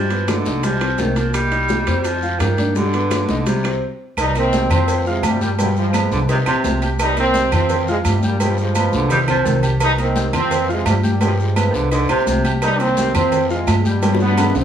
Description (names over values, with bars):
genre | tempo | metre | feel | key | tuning
latin, salsa | 170 BPM | 4/4 | straight | C minor | A4 = 440 Hz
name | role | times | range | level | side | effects
breathy baritone saxophone | second line | 0.0-3.8, 6.1-12.5 s | C3 to G3 | -21 LUFS | right 2 dB | none
clear grand piano | accompaniment | 0.0-14.6 s | G3 to G6 | -23 LUFS | left 2 dB | none
upright bass | bass | 0.0-14.6 s | Bb1 to G2 | -20 LUFS | equal | none
bongos and cowbell | percussion | 0.1-14.6 s | none | -27 LUFS | left 3 dB | none
congas | percussion | 0.1-14.6 s | none | -26 LUFS | left 2 dB | none
maracas | percussion | 0.1-14.6 s | none | -37 LUFS | right 4 dB | none
timbales and agogo bells | percussion | 0.1-14.6 s | none | -25 LUFS | right 6 dB | none
claves | percussion | 0.3-14.6 s | none | -35 LUFS | right 5 dB | none
guiro | percussion | 0.3-14.6 s | none | -35 LUFS | left 4 dB | none
brilliant trombone section | melody | 4.2-14.6 s | Bb2 to Eb4 | -20 LUFS | right 1 dB | none
room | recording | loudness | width
moderate studio reverb, RT60 1.0 s | small room ambience | -15 LUFS | side -9 dB against mid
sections
0.0-4.2 A section; 4.2-14.6 B section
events
stop 3.8-4.2; drum fill 8.8-9.8, 14.0-14.6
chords
0.0 G7; 0.6 C5; 1.3 Cm7; 2.1 Fsus2; 2.8 G; 3.5 C5; 4.2 Cm7; 4.9 Fsus2; 5.6 G7; 6.3 Cm; 7.0 Cm7; 7.7 Fsus2; 8.4 G7; 9.1 Cm; 9.8 Cm7; 10.5 Fsus2; 11.2 G7; 11.9 Cm; 12.6 Cm7; 13.3 Fmadd9; 14.0 G